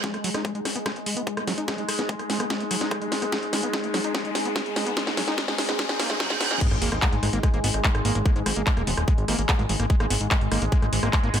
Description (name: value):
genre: psychedelic trance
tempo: 146 BPM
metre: 4/4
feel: straight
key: unclear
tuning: A4 = 442 Hz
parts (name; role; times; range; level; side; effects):
- bubbling stepped-filter texture; sustained chords; 0.0-11.4 s; G#3; -32 LUFS; equal; chorus, built-in reverb, sidechain pumping
- overdriven acid bass; riff; 0.0-11.4 s; F#3 to D#4; -31 LUFS; equal; distortion, auto-pan, cassette tape, sidechain pumping, ping-pong delay
- electronic kick drum; drums; 0.0-11.2 s; none; -23 LUFS; equal; high-pass filter on kick, high-pass filter on room
- techno drum kit; drums; 0.0-11.4 s; crash cymbal, handclaps, hi-hat, rim click, snare drum; -27 LUFS; equal; none
- reverse cymbal, riser and sub drop; sound effects; 0.0-8.3 s; none; -32 LUFS; equal; none
- warbly tape-like pad; texture; 1.1-11.4 s; C#4 to G#5; -34 LUFS; left 1 dB; chorus, built-in reverb, sidechain pumping
- fat analog bass; bass; 6.7-11.4 s; D#1 to G#1; -25 LUFS; equal; none
room: light reverb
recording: high-pass filter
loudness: -22 LUFS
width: side -9 dB against mid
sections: 0.0-6.6 A section; 6.6-11.4 B section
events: build-up 0.0-6.6; drum fill 0.0-6.6; riser 0.0-6.6; filter sweep on acid bass 0.0-6.6; reverse cymbal 5.8-6.6; drop 6.6-11.4; impact 6.6-8.3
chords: 0.0 G#5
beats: | 0.04 0.45 0.86 1.27 | 1.68 2.09 2.50 2.91 | 3.32 3.73 4.15 4.56 | 4.97 5.38 5.79 6.20 | 6.61 7.02 7.43 7.84 | 8.26 8.67 9.08 9.49 | 9.90 10.31 10.72 11.13